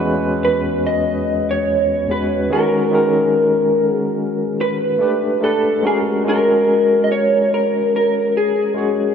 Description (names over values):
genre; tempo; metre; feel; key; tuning
R&B; 72 BPM; 4/4; swing 54% on 16ths; C# dorian; A4 = 442 Hz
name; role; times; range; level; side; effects
barky tine electric piano; accompaniment; 0.0-9.1 s; E2 to C#5; -19 LUFS; left 1 dB; overdrive, fast tremolo
electric guitar through a small old amp; melody; 0.4-9.1 s; G#4 to D#5; -17 LUFS; equal; analog chorus
room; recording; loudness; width
wet huge ambient reverb, RT60 4.6 s; dreamy mix soaked in reverb; -15 LUFS; side -7 dB against mid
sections
0.0-9.1 A section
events
none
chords
0.0 Eadd9; 2.5 D#m7; 5.0 D5; 5.8 C#5